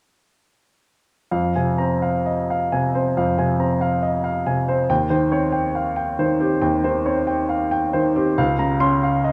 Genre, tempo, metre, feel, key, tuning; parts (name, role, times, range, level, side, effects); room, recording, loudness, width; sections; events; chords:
classical, romantic character piece for solo piano; 69 BPM; 4/4; rubato; F minor; A4 = 442 Hz
clear grand piano; solo; 1.3-9.3 s; Db2 to C6; -20 LUFS; equal
wet recital hall reverb, RT60 1.6 s; -21 LUFS; mono
1.3-9.3 A section
1.3 Fm; 4.9 Cm/Eb; 8.4 Bbm/Db